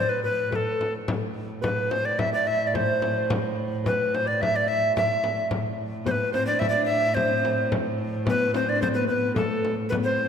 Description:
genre	medieval dance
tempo	108 BPM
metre	2/4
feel	straight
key	A minor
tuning	A4 = 440 Hz
part	breathy bright tenor recorder	melody	0.0-10.3 s	A4 to E5	-25 LUFS	left 1 dB	none
part	Celtic harp	second line	0.0-10.3 s	A4 to E5	-31 LUFS	right 6 dB	none
part	rich viola da gamba	drone	0.0-10.3 s	A2	-33 LUFS	right 1 dB	none
part	frame drum	percussion	0.3-10.2 s	none	-30 LUFS	left 2 dB	none
part	dark viola da gamba	second line	6.0-10.3 s	A3 to E4	-30 LUFS	left 5 dB	none
room	wet concert hall reverb, RT60 2.2 s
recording	none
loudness	-22 LUFS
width	side -7 dB against mid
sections	0.0-1.1 A section; 1.1-9.9 A section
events	none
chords	none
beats	0.52 | 1.07 1.63 | 2.18 2.74 | 3.29 3.84 | 4.40 4.95 | 5.50 6.05 | 6.61 7.16 | 7.71 8.27 | 8.82 9.37 | 9.92

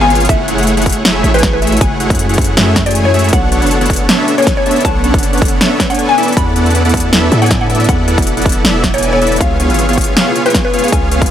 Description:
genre	future bass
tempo	158 BPM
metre	4/4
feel	swing 54% on 16ths, half-time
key	F# minor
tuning	A4 = 436 Hz
part	mallet-like synth pluck	melody	0.0-11.1 s	B4 to B5	-18 LUFS	left 2 dB	lush chorus, sidechain pumping, digital delay
part	shimmering ambient pad	sustained chords	0.0-11.3 s	C#3 to F#4	-21 LUFS	equal	chorus, built-in reverb, sidechain pumping
part	dense compressed supersaw	riff	0.0-11.3 s	A3 to G#5	-15 LUFS	equal	cassette tape, sidechain pumping
part	warm 808-style bass	bass	0.0-11.3 s	E1 to A2	-16 LUFS	equal	sidechain pumping
part	big-room dance drum kit	drums	0.1-11.3 s	hi-hat, snare drum	-16 LUFS	equal	overdrive
part	electronic kick drum	drums	0.3-11.3 s	none	-15 LUFS	equal	overdrive
room	little or no reverb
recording	none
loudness	-9 LUFS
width	side -10 dB against mid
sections	0.0-11.3 A section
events	break 0.0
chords	0.3 F#m9; 3.3 Bm9; 6.2 E9sus4; 9.4 C#7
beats	| 0.29 0.67 1.05 1.43 | 1.81 2.19 2.57 2.95 | 3.33 3.71 4.09 4.47 | 4.85 5.23 5.61 5.99 | 6.37 6.75 7.13 7.51 | 7.89 8.27 8.65 9.03 | 9.41 9.79 10.16 10.54 | 10.93 11.30

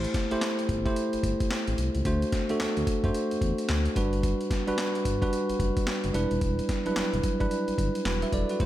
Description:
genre	R&B, new jack swing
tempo	110 BPM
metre	4/4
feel	swing 62% on 16ths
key	unclear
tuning	A4 = 440 Hz
part	bell-like tine electric piano	accompaniment	0.0-8.7 s	F#3 to E5	-28 LUFS	right 1 dB	none
part	smooth gliding synth bass	bass	0.0-8.7 s	D#1 to F#2	-30 LUFS	equal	none
part	boom bap sampler-style drum kit	drums	0.0-8.7 s	handclaps, hi-hat, kick drum, snare drum	-30 LUFS	equal	none
room	light reverb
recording	none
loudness	-25 LUFS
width	side -13 dB against mid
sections	0.0-8.7 A section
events	none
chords	0.0 Am7; 2.1 D7; 4.0 Gmaj7; 6.1 Em7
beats	0.42 0.96 1.51 | 2.05 2.60 3.14 3.69 | 4.23 4.78 5.33 5.87 | 6.42 6.96 7.51 8.05 | 8.60

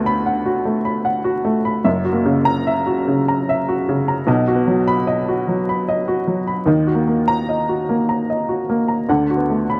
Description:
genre	neoclassical minimalist piano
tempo	75 BPM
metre	3/4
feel	rubato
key	F# major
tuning	A4 = 440 Hz
part	warm upright piano	solo	0.0-9.8 s	F#1 to B5	-19 LUFS	equal	none
room	light reverb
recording	dry, close 1970s-style studio recording, vinyl crackle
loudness	-19 LUFS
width	mono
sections	0.0-9.8 A section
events	none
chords	0.0 D6; 1.9 F#7; 4.3 B; 6.7 D#m; 9.1 D6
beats	0.26 1.05 | 1.85 2.66 3.47 | 4.27 5.06 5.86 | 6.67 7.47 8.28 | 9.08

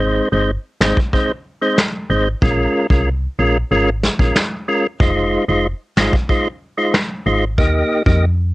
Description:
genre	dancehall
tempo	93 BPM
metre	4/4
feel	straight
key	Ab major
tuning	A4 = 440 Hz
part	percussive tonewheel organ	accompaniment	0.0-8.3 s	Ab3 to Eb5	-16 LUFS	equal	overdrive, chorus vibrato, fast rotary speaker, sidechain pumping, cassette tape
part	woody FM bass	bass	0.0-8.5 s	F1 to F2	-18 LUFS	equal	none
part	vintage brush drum kit	drums	0.8-8.2 s	finger snaps, kick drum, snare drum	-16 LUFS	equal	vintage 12-bit sampler grit, cassette tape
room	little or no reverb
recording	home recording on cassette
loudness	-15 LUFS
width	side -19 dB against mid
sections	0.0-8.5 A section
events	none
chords	0.0 Ab; 2.4 Bbm7; 5.0 Fm7; 7.6 Eb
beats	0.48 1.13 1.78 | 2.42 3.07 3.71 4.36 | 5.00 5.65 6.29 6.94 | 7.58 8.23

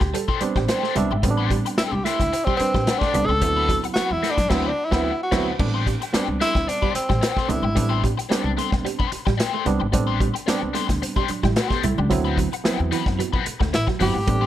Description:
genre	funk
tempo	110 BPM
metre	4/4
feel	straight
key	A dorian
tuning	A4 = 440 Hz
part	overdriven electric guitar	accompaniment	0.0-14.5 s	C4 to C5	-28 LUFS	left 10 dB	wah, spring reverb, plate reverb
part	barky reed electric piano	stabs	0.0-14.5 s	F3 to E5	-26 LUFS	right 4 dB	overdrive, plate reverb
part	upright bass	bass	0.0-14.5 s	G1 to F#2	-25 LUFS	equal	none
part	vintage drum kit	drums	0.0-14.4 s	crash cymbal, hi-hat, kick drum, snare drum	-25 LUFS	equal	none
part	electric guitar at the edge of break-up	riff	0.1-14.4 s	E3 to A3	-30 LUFS	right 9 dB	none
part	breathy tenor saxophone	melody	1.8-8.0, 13.7-14.5 s	C4 to A4	-23 LUFS	equal	plate reverb
room	light reverb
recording	none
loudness	-19 LUFS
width	side -12 dB against mid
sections	0.0-5.6 A section; 5.6-14.5 B section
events	reed electric piano fill 0.0-1.2; tenor saxophone solo 0.0-5.6; band accent 4.5-5.6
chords	0.0 Am11; 3.4 D13; 5.6 Am11; 12.1 D13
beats	0.14 0.69 | 1.24 1.78 2.33 2.87 | 3.42 3.96 4.51 5.05 | 5.59 6.14 6.68 7.23 | 7.77 8.31 8.85 9.40 | 9.94 10.48 11.02 11.56 | 12.11 12.65 13.19 13.73 | 14.28

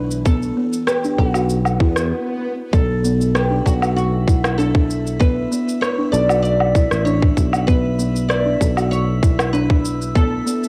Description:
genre	organic downtempo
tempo	97 BPM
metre	4/4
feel	straight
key	B minor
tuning	A4 = 440 Hz
part	oud	melody	0.0-10.7 s	F#4 to D5	-27 LUFS	equal	analog delay
part	warm analog pad	sustained chords	0.0-2.1 s	E3 to A4	-39 LUFS	equal	none
part	sustaining fretless electric bass	bass	0.0-10.4 s	A1 to E2	-23 LUFS	equal	transformer saturation, sidechain pumping
part	electronic cabasa, rim click and woodblock	drums	0.1-10.7 s	none	-26 LUFS	equal	cassette tape
part	buzzing kalimba	arpeggios	0.3-10.6 s	B3 to B4	-24 LUFS	equal	analog delay
part	electronic kick drum	drums	0.3-10.3 s	none	-18 LUFS	equal	overdrive, cassette tape
part	swell	sound effects	1.7-2.7 s	none	-29 LUFS	equal	none
part	drifting glass-harmonics texture	texture	3.2-10.7 s	E4 to E5	-36 LUFS	equal	chorus, built-in reverb
room	light reverb, digital ambience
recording	home recording on cassette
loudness	-18 LUFS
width	mono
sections	0.0-2.7 A section; 2.7-10.7 A section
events	swell 1.7-2.7; stop 2.1-2.7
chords	0.0 Bm7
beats	| 0.26 0.88 1.50 2.12 | 2.73 3.35 3.97 4.59 | 5.21 5.83 6.45 7.06 | 7.68 8.30 8.92 9.54 | 10.16

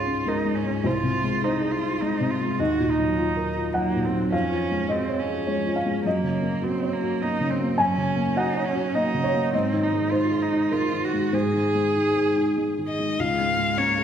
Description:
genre	neoclassical piano and strings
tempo	103 BPM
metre	3/4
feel	rubato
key	Db major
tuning	A4 = 440 Hz
part	rich cello	second line	0.0-14.0 s	Ab3 to Ab4	-27 LUFS	right 2 dB	none
part	felt-muted upright piano	accompaniment	0.0-14.0 s	C2 to Ab5	-23 LUFS	equal	none
part	rich violin	melody	12.9-14.0 s	Db5 to F5	-23 LUFS	left 3 dB	none
room	wet concert hall reverb, RT60 1.9 s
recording	recorded in a church or concert hall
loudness	-21 LUFS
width	side -8 dB against mid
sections	0.0-13.2 A section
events	none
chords	0.0 Db; 0.9 Ab/C; 2.6 Ebmadd9; 4.3 Db/F; 6.1 Gb6; 9.5 Ab; 13.2 Db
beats	0.27 | 0.85 1.43 2.01 | 2.60 3.18 3.75 | 4.33 4.91 5.48 | 6.05 6.63 7.21 | 7.79 8.36 8.95 | 9.53 10.11 10.72 | 11.33 11.95 12.57 | 13.19 13.78

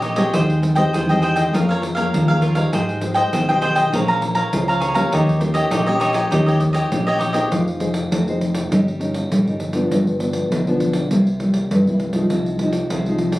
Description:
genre	samba and choro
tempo	100 BPM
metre	4/4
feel	straight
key	F minor from 7.5 s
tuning	A4 = 440 Hz
part	cavaquinho	accompaniment	0.0-7.5 s	Eb4 to Bb5	-20 LUFS	equal	none
part	nylon-string guitar	accompaniment	0.0-13.4 s	G2 to C5	-21 LUFS	left 1 dB	none
part	fingered electric bass	bass	0.0-13.4 s	F1 to Ab2	-22 LUFS	equal	none
part	pandeiro	percussion	0.0-13.4 s	none	-25 LUFS	right 1 dB	none
room	moderate studio reverb, RT60 0.8 s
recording	recorded on a phone in the room, club reverb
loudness	-16 LUFS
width	side -17 dB against mid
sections	0.0-7.5 A section; 7.5-13.4 B section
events	none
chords	0.3 Abmaj7/Eb; 1.5 Db6/F; 2.7 Abmaj7; 3.9 Bbm9; 5.1 Eb7; 7.5 Fm7; 8.7 Eb7/G; 9.9 G7; 11.1 C7; 12.3 Fm7/C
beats	| 0.35 0.95 1.54 2.14 | 2.74 3.34 3.93 4.53 | 5.13 5.73 6.32 6.92 | 7.52 8.12 8.71 9.31 | 9.91 10.51 11.11 11.71 | 12.31 12.91

